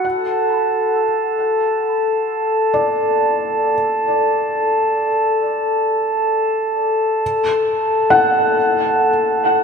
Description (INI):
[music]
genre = ambient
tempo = free time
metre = none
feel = none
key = D major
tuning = A4 = 441 Hz
[part]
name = felt-muted upright piano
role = arpeggios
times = 0.0-9.6 s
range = D5 to B5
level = -21 LUFS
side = equal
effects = diffuse ambient delay
[part]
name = glass harmonica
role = texture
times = 0.0-9.6 s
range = A4 to A5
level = -16 LUFS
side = equal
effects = none
[sound]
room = wet cathedral reverb, RT60 5.6 s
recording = none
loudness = -15 LUFS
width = side -6 dB against mid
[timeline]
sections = 0.1-9.6 A section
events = none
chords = 0.1 D; 7.2 N.C.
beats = free time